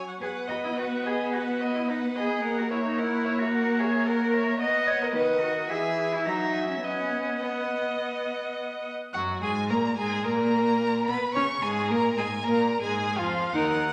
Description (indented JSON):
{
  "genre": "quick classical-period movement for string quartet",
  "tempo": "109 BPM",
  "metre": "4/4",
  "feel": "rubato",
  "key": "B major, F# major from 9.1 s",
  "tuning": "A4 = 440 Hz",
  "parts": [
    { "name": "rich violin", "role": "melody", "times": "0.0-13.9 s", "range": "E5 to C#6", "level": "-36 LUFS", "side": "equal", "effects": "none" },
    { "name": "dark violin", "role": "second line", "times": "0.2-13.8 s", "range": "E#4 to E5", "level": "-32 LUFS", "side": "equal", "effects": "none" },
    { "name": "warm viola", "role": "accompaniment", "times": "0.2-13.8 s", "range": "D#3 to D#4", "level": "-31 LUFS", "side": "equal", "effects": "none" },
    { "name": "warm cello", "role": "bass", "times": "0.2-13.9 s", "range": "D#2 to D#5", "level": "-33 LUFS", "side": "equal", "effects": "none" }
  ],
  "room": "wet recital hall reverb, RT60 1.5 s",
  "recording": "none",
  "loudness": "-27 LUFS",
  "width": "mono",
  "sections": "0.0-9.1 A section; 9.1-13.9 B section",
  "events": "none",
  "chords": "0.2 B; 2.4 F#7/A#; 4.6 B; 5.7 E; 6.3 F#7; 6.8 B; 9.1 F#; 11.4 C#",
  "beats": "| 0.21 0.77 1.33 1.89 | 2.43 2.98 3.52 4.06 | 4.60 5.14 5.69 6.25 | 6.83 7.41 7.99 8.56 | 9.14 9.70 10.25 10.80 | 11.35 11.90 12.45 13.00 | 13.54"
}